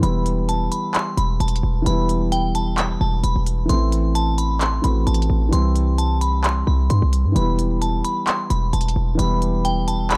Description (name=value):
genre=hip hop, trap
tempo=131 BPM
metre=4/4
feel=half-time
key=E minor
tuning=A4 = 440 Hz
part: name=glassy synth bell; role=melody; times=0.0-10.2 s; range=G5 to C6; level=-28 LUFS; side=equal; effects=chorus, phaser, digital delay
part: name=dark grand piano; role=accompaniment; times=0.0-10.2 s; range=E3 to F#4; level=-27 LUFS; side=equal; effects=none
part: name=hard-hitting 808-style bass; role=bass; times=0.0-10.2 s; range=E1 to G2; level=-22 LUFS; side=equal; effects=none
part: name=trap drum kit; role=drums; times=0.0-10.2 s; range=handclaps, hi-hat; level=-28 LUFS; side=equal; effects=none
part: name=reverse cymbal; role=sound effects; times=10.1-10.2 s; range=none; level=barely audible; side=none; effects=none
room=little or no reverb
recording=dark, warm production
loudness=-20 LUFS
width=mono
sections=0.0-10.2 A section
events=none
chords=0.0 Em; 3.7 Am; 5.5 C; 7.4 Em